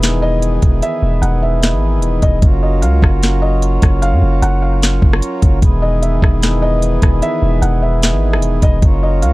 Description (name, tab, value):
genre	hip hop, atmospheric cloud-rap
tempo	150 BPM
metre	4/4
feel	half-time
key	unclear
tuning	A4 = 440 Hz
part	felt-muted upright piano	melody	0.0-9.3 s	D#5 to Gb5	-22 LUFS	equal	low-pass filter, tape echo
part	pedal harmonium	sustained chords	0.0-9.3 s	D#3 to Bb4	-20 LUFS	equal	sidechain pumping
part	long sustained 808-style bass	bass	0.0-9.3 s	E1 to Gb2	-14 LUFS	equal	none
part	smooth R&B drum kit	drums	0.0-9.3 s	hi-hat, kick drum, rim click, snare drum	-13 LUFS	equal	none
room	small room ambience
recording	dark, warm production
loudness	-11 LUFS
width	side -20 dB against mid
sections	0.0-2.4 A section; 2.4-9.3 B section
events	none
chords	0.0 Emaj7; 2.4 Gbmaj7; 5.6 Emaj7; 8.8 Gbmaj7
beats	0.02 0.42 | 0.82 1.22 1.62 2.02 | 2.42 2.82 3.22 3.62 | 4.02 4.42 4.82 5.22 | 5.62 6.02 6.42 6.82 | 7.22 7.62 8.02 8.42 | 8.82 9.22